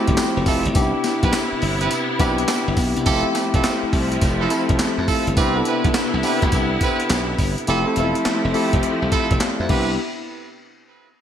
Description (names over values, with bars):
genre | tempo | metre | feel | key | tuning
R&B, new jack swing | 104 BPM | 4/4 | swing 66% on 16ths | C major | A4 = 436 Hz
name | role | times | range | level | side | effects
tine electric piano | accompaniment | 0.0-10.0 s | A3 to F5 | -22 LUFS | left 2 dB | medium stereo tremolo
clear studio string section | sustained chords | 0.0-10.0 s | C3 to E4 | -26 LUFS | equal | none
glassy slap bass | bass | 0.1-10.0 s | E1 to F2 | -23 LUFS | equal | none
breakbeat sampler-style drum kit | drums | 0.1-9.9 s | crash cymbal, handclaps, hi-hat, kick drum, snare drum, tambourine | -22 LUFS | equal | gated reverb
warm horn section | stabs | 0.5-9.9 s | C4 to B4 | -26 LUFS | right 6 dB | digital delay
room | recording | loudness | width
wet lush hall reverb, RT60 1.5 s | bright 1980s-style digital production | -17 LUFS | side -9 dB against mid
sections
0.0-5.4 A section; 5.4-10.0 B section; 10.0-11.2 C section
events
none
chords
0.0 Fmaj7; 0.8 Cmaj7; 3.1 Fmaj7; 5.4 Cmaj7; 7.7 Fmaj7; 9.7 Cmaj7; 10.0 N.C.